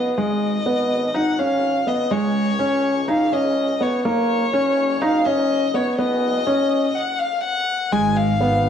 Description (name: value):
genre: piano and strings electronica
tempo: 124 BPM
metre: 4/4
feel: straight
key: G# dorian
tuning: A4 = 438 Hz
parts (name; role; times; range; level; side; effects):
- dark violin; melody; 0.0-8.7 s; C#5 to G#5; -22 LUFS; left 2 dB; low-pass filter, cassette tape
- felt-muted upright piano; riff; 0.0-8.7 s; G#3 to D#4; -19 LUFS; equal; analog delay
- warm studio double bass section; bass; 0.0-8.7 s; F#1 to C#2; -30 LUFS; right 2 dB; high-pass filter
room: wet small room reverb, RT60 0.6 s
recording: home recording on cassette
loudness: -18 LUFS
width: side -8 dB against mid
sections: 0.0-7.9 A section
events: build-up 0.0-7.9; break 7.0-7.9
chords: 0.2 G#m; 2.1 C#5; 4.0 F#; 6.0 Badd9/F#; 7.9 G#m